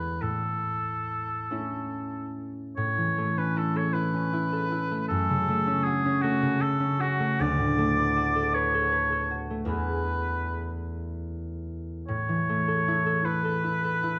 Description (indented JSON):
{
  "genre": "classical, romantic duo for oboe and harp",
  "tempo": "46-54 BPM (dotted quarters)",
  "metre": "6/8",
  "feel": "rubato",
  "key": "A major",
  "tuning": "A4 = 441 Hz",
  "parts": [
    { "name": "warm oboe", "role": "melody", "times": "0.0-14.2 s", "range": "F#4 to D5", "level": "-30 LUFS", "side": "equal", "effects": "none" },
    { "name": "concert harp", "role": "accompaniment", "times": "0.0-14.2 s", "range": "D2 to B4", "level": "-30 LUFS", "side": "equal", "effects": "none" }
  ],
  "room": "wet recital hall reverb, RT60 1.6 s",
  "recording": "none",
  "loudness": "-27 LUFS",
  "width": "mono",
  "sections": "0.0-2.8 A section; 2.8-14.2 A section",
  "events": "none",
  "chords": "0.2 A; 5.1 F#m; 7.4 D6; 9.7 E; 12.1 A"
}